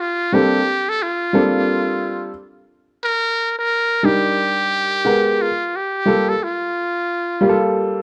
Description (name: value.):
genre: hip hop.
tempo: 89 BPM.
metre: 4/4.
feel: swing 61% on 16ths.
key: G minor.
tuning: A4 = 439 Hz.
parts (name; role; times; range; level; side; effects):
trumpet with metal mute; melody; 0.0-7.8 s; F4 to Bb4; -22 LUFS; equal; none.
warm grand piano; accompaniment; 0.3-8.0 s; G3 to Gb5; -19 LUFS; equal; plate reverb.
room: wet studio reverb, RT60 0.6 s.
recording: cassette tape.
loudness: -19 LUFS.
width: mono.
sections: 0.0-8.0 A section.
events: none.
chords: 0.3 Bbmaj13; 3.0 Ebmaj7; 5.1 Abm9; 5.7 Gm9.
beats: | 0.33 1.01 1.68 2.35 | 3.03 3.70 4.38 5.05 | 5.73 6.40 7.07 7.75.